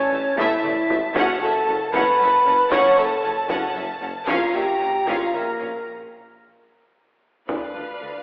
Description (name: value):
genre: cinematic, epic orchestral film score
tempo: 76 BPM (dotted quarters)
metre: 6/8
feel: straight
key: unclear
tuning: A4 = 440 Hz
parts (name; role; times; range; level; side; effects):
- rich symphonic violin section; melody; 0.0-8.2 s; F5 to Bb5; -31 LUFS; equal; none
- hollow concert flute; second line; 0.0-5.9 s; Bb4 to C#6; -22 LUFS; equal; none
- mellow French horn section; sustained chords; 0.0-8.2 s; Bb3 to C#5; -22 LUFS; equal; none
- rich studio violin section; second line; 0.1-8.2 s; D4 to F#5; -29 LUFS; equal; none
- rich symphonic viola section; accompaniment; 0.1-8.2 s; A3 to B4; -30 LUFS; equal; none
- mellow tuba; bass; 0.1-8.1 s; F#1 to D2; -34 LUFS; equal; none
- rich studio double bass section; bass; 0.1-8.1 s; F#1 to D2; -38 LUFS; equal; none
- rich symphonic cello section; bass; 0.1-8.1 s; D2 to Bb2; -34 LUFS; equal; none
- solo taiko drums; drums; 0.4-8.0 s; none; -29 LUFS; equal; none
room: wet scoring stage reverb, RT60 1.9 s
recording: heard from further back in the room, telephone sound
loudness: -18 LUFS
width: side -25 dB against mid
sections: 0.0-7.5 A section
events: drum fill 0.4-1.2; break 5.9-7.5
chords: 0.0 A; 1.2 F#m; 4.3 Bbm; 5.9 N.C.; 7.5 Dm